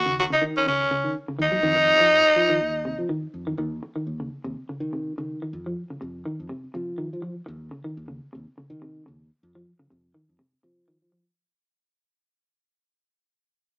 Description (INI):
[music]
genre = afrobeat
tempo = 123 BPM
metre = 4/4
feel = swing 55% on 16ths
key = unclear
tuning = A4 = 440 Hz
[part]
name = raspy tenor saxophone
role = melody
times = 0.0-3.1 s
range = Db4 to Gb4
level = -18 LUFS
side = equal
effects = none
[part]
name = clean electric guitar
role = arpeggios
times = 0.1-11.3 s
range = C3 to Gb3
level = -32 LUFS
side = equal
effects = none
[part]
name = fingered electric bass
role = bass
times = 0.1-11.2 s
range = Db2 to F3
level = -33 LUFS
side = equal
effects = none
[sound]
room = moderate studio reverb, RT60 0.7 s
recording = band playing live in one room, small speaker sound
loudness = -22 LUFS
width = side -39 dB against mid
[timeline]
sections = 0.0-3.6 A section; 3.6-11.4 B section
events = fade-out 3.6-11.4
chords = 0.0 Eb7(no3); 1.6 F5; 3.6 Cm/Eb; 5.5 F5; 7.5 Cm/Eb; 9.4 F5